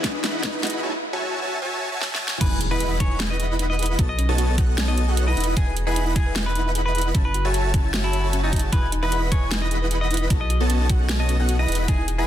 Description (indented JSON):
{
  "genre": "future bass",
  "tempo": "152 BPM",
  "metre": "4/4",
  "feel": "half-time",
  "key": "E major",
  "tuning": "A4 = 439 Hz",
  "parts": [
    { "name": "warm grand piano", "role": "accompaniment", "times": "0.0-0.9 s", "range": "B3 to D#5", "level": "-36 LUFS", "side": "left 2 dB", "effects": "sidechain pumping, ping-pong delay" },
    { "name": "thumb-piano-like synth pluck", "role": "arpeggios", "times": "0.0-12.2 s", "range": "C#4 to D#5", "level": "-34 LUFS", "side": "left 5 dB", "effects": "chorus, cassette tape, sidechain pumping, ping-pong delay" },
    { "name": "dense compressed supersaw", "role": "riff", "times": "0.0-12.3 s", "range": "B3 to B5", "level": "-27 LUFS", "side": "equal", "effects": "sidechain pumping" },
    { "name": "dubstep drum kit", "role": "drums", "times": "0.0-12.2 s", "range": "crash cymbal, hi-hat, snare drum", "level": "-28 LUFS", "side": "right 1 dB", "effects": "none" },
    { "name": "electronic kick drum", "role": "drums", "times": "0.0-12.0 s", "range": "none", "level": "-21 LUFS", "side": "equal", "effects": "none" },
    { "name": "riser and impact", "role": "sound effects", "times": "0.0-4.0 s", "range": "none", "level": "-31 LUFS", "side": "equal", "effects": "none" },
    { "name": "clean electric guitar", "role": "melody", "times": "2.4-12.3 s", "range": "D#4 to D#5", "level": "-29 LUFS", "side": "equal", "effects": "spring reverb, sidechain pumping, ping-pong delay" },
    { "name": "airy dreamy lead", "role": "arpeggios", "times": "2.4-12.3 s", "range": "F#5 to B5", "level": "-32 LUFS", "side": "equal", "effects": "chorus, sidechain pumping" },
    { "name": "saturated sub bass", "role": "bass", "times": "2.4-12.3 s", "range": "E1 to B1", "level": "-23 LUFS", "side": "equal", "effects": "sidechain pumping" }
  ],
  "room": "digital ambience",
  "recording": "dense, heavily limited modern master, high-pass filter",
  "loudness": "-20 LUFS",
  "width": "side -11 dB against mid",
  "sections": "0.0-2.4 A section; 2.4-12.3 B section",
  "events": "build-up 0.0-2.4; drum fill 0.0-0.8, 2.0-2.4; riser 0.0-0.8; filter sweep 0.0-2.4; drop 2.4-12.3; impact 2.4-4.0",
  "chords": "0.0 Emaj7; 0.8 F#m9; 2.4 Emaj7; 4.0 B9; 5.4 Emaj7; 7.1 F#m9; 8.7 Emaj7; 10.3 B9; 11.7 Emaj7",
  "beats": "0.04 0.43 | 0.83 1.23 1.62 2.01 | 2.41 2.80 3.20 3.59 | 3.99 4.38 4.78 5.17 | 5.57 5.96 6.36 6.75 | 7.15 7.54 7.93 8.33 | 8.72 9.12 9.51 9.91 | 10.30 10.70 11.09 11.49 | 11.88"
}